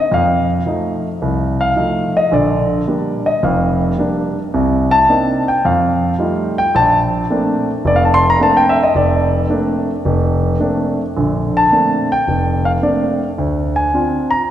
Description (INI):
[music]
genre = solo jazz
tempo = 109 BPM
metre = 4/4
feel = swing 69% on 8ths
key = Bb major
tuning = A4 = 441 Hz
[part]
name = dark concert grand piano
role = solo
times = 0.0-14.5 s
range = F1 to C6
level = -13 LUFS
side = equal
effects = none
[sound]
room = wet church reverb, RT60 2.8 s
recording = recorded in a church or concert hall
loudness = -13 LUFS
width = side -11 dB against mid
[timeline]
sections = 0.0-11.2 A section; 11.2-14.5 B section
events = grand piano solo 0.0-11.2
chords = 0.1 F7; 2.3 Bb6; 4.5 Cm9; 5.6 F9; 6.7 Bbmaj9; 13.4 Dm7b5